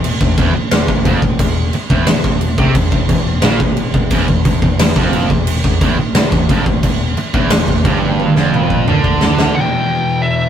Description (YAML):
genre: heavy metal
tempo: 88 BPM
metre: 4/4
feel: straight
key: E phrygian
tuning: A4 = 440 Hz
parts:
  - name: distorted electric guitar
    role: riff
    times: 0.0-9.5 s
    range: E2 to D3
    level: -19 LUFS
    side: right 4 dB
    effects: overdrive
  - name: sludgy distorted guitar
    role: riff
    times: 0.0-10.5 s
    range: E2 to E3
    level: -20 LUFS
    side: left 4 dB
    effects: overdrive
  - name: growling picked electric bass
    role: bass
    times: 0.0-9.5 s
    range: E1 to D2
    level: -20 LUFS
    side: equal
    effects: overdrive
  - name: big rock drum kit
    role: drums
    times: 0.0-9.5 s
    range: crash cymbal, kick drum, snare drum, toms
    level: -14 LUFS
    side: equal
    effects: none
  - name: high-gain lead guitar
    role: melody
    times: 9.6-10.5 s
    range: E5 to G5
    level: -17 LUFS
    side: right 1 dB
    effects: distortion
room: light reverb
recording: rough rehearsal-room recording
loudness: -12 LUFS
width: side -9 dB against mid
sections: 0.0-9.6 A section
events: drum fill 8.2-9.6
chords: 0.0 Em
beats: 0.04 0.72 | 1.40 2.08 2.76 3.44 | 4.12 4.80 5.48 6.16 | 6.84 7.52 8.20 8.88 | 9.56 10.24